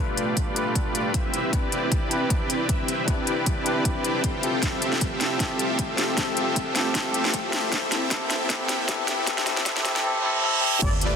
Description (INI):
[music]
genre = future bass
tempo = 155 BPM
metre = 4/4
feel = swing 55% on 16ths, half-time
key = unclear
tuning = A4 = 441 Hz
[part]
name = tine electric piano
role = accompaniment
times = 0.0-10.8 s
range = C4 to E5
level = -29 LUFS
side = moving between left 8 dB and right 1 dB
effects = auto-pan, sidechain pumping, tape echo
[part]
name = shimmering ambient pad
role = sustained chords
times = 0.1-10.0 s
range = B2 to B4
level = -37 LUFS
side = equal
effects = none
[part]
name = dense compressed supersaw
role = riff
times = 0.0-11.2 s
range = A3 to G5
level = -27 LUFS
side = right 1 dB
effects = sidechain pumping, low-pass filter, tape echo
[part]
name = saturated sub bass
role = bass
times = 0.0-11.2 s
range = F1 to C2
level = -38 LUFS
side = equal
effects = none
[part]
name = riser, reverse cymbal and sub drop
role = sound effects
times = 4.1-11.2 s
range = none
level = -31 LUFS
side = right 3 dB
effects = none
[part]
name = trap drum kit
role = drums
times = 0.2-11.1 s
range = crash cymbal, hi-hat, snare drum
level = -27 LUFS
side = equal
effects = none
[part]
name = electronic kick drum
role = drums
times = 0.4-10.9 s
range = none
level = -27 LUFS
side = equal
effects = overdrive
[part]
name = wide unison pluck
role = arpeggios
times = 10.8-11.2 s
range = D5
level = -31 LUFS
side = equal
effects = cassette tape, sidechain pumping
[sound]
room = moderate huge ambient reverb, RT60 6.3 s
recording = dense, heavily limited modern master, high-pass filter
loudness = -22 LUFS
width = side -6 dB against mid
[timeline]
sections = 0.0-10.8 A section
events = build-up 0.0-10.8; filter sweep on supersaw synth 0.0-10.8; filter sweep 0.0-10.8; drum fill 4.6-10.0; reverse cymbal 10.0-10.8; impact 10.8-11.2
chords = 0.0 G9; 1.3 Cmaj9; 4.4 Fmaj9; 7.5 Am9